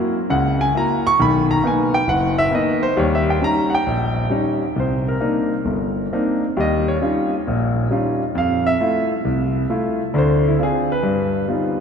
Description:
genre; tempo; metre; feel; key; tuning
jazz; 134 BPM; 4/4; swing 68% on 8ths; C minor from 4.8 s; A4 = 440 Hz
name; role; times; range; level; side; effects
clear concert grand piano; solo; 0.0-11.8 s; F#1 to C#6; -17 LUFS; equal; none
room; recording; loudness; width
wet cathedral reverb, RT60 5.3 s; in a vast, echoing space; -17 LUFS; side -6 dB against mid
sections
0.0-4.8 A section; 4.8-11.8 A section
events
grand piano solo 0.0-4.8, 4.8-11.8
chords
0.0 F#7; 1.2 Bmaj7; 3.0 D#7; 4.8 Cm9; 6.6 Eb9; 8.3 Fmaj7; 10.1 Dm9b5; 11.0 Gaug7

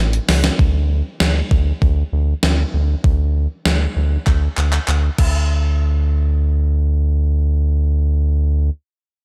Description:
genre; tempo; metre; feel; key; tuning
synth-pop; 98 BPM; 4/4; straight; unclear; A4 = 440 Hz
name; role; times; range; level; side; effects
round analog bass; bass; 0.0-8.7 s; A1 to D2; -18 LUFS; equal; none
gated 80s digital drum machine; drums; 0.1-5.3 s; crash cymbal, handclaps, hi-hat, kick drum, snare drum; -21 LUFS; equal; gated reverb, gated reverb snare, overdrive
room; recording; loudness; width
light reverb; none; -17 LUFS; mono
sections
0.6-5.5 A section; 5.5-7.9 B section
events
drum fill 0.0-0.6, 4.3-5.5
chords
none

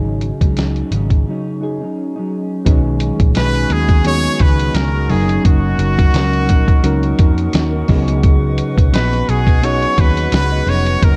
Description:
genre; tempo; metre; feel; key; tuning
indie pop, bedroom pop; 86 BPM; 4/4; swing 55% on 16ths; unclear; A4 = 442 Hz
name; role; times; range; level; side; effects
mellow electric guitar; accompaniment; 0.0-11.2 s; C#3 to D#5; -24 LUFS; equal; lush chorus, vibrato effect
soft electric-piano-like synth keys; accompaniment; 0.0-11.2 s; F#3 to A#4; -26 LUFS; equal; chorus
vintage muted picked electric bass; bass; 0.0-11.2 s; E#1 to E#2; -20 LUFS; equal; none
lo-fi sampler-style drum kit; drums; 0.2-11.2 s; hi-hat, kick drum, snare drum; -16 LUFS; equal; none
warbly tape-like pad; sustained chords; 3.0-11.2 s; B3 to C#6; -31 LUFS; equal; chorus, built-in reverb
bright trumpet; melody; 3.4-11.2 s; F#4 to C#5; -22 LUFS; equal; lush chorus, slapback echo
room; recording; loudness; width
light reverb, digital ambience; dark, warm production; -15 LUFS; mono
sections
0.0-2.7 A section; 2.7-11.2 B section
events
break 1.3-2.7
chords
0.0 G#7sus4; 2.7 B69; 5.1 F#6; 7.9 C#9sus4

